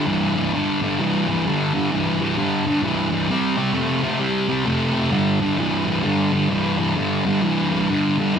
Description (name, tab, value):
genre	rock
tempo	130 BPM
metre	4/4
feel	swing 62% on 8ths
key	unclear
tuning	A4 = 440 Hz
part	thick fuzz guitar	solo	0.0-8.4 s	G2 to A3	-18 LUFS	equal	distortion
room	moderate large studio reverb, RT60 0.8 s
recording	band playing live in one room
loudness	-18 LUFS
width	side -7 dB against mid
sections	0.0-8.4 A section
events	none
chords	0.0 G5; 3.3 C5; 5.1 G5